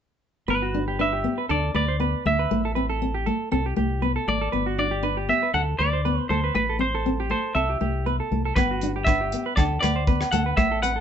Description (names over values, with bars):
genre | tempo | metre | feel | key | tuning
highlife guitar band | 119 BPM | 4/4 | swing 54% on 16ths | G major | A4 = 440 Hz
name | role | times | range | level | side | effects
semi-hollow electric guitar | melody | 0.5-11.0 s | B4 to F#5 | -26 LUFS | right 1 dB | none
fingerpicked steel-string acoustic guitar | accompaniment | 0.5-11.0 s | A3 to D4 | -28 LUFS | left 2 dB | none
semi-hollow electric guitar | arpeggios | 0.5-11.0 s | F#4 to C5 | -29 LUFS | right 4 dB | none
fingered electric bass | bass | 0.5-11.0 s | G1 to D2 | -28 LUFS | equal | none
damped 70s drum kit | drums | 8.6-11.0 s | hi-hat, kick drum, rim click | -24 LUFS | equal | none
agogo bells | percussion | 8.6-10.7 s | none | -32 LUFS | equal | none
room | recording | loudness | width
moderate studio reverb, RT60 0.6 s | band playing live in one room, nothing above 7.9 kHz | -21 LUFS | side -8 dB against mid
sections
0.5-11.0 A section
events
none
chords
0.5 G; 1.5 D5; 2.5 Am; 3.5 C; 4.5 G; 5.5 D5; 6.5 Am; 7.6 C; 8.6 G; 9.6 D5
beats
| 0.49 0.99 1.50 2.00 | 2.51 3.02 3.52 4.03 | 4.53 5.04 5.54 6.04 | 6.55 7.05 7.56 8.06 | 8.57 9.07 9.57 10.08 | 10.58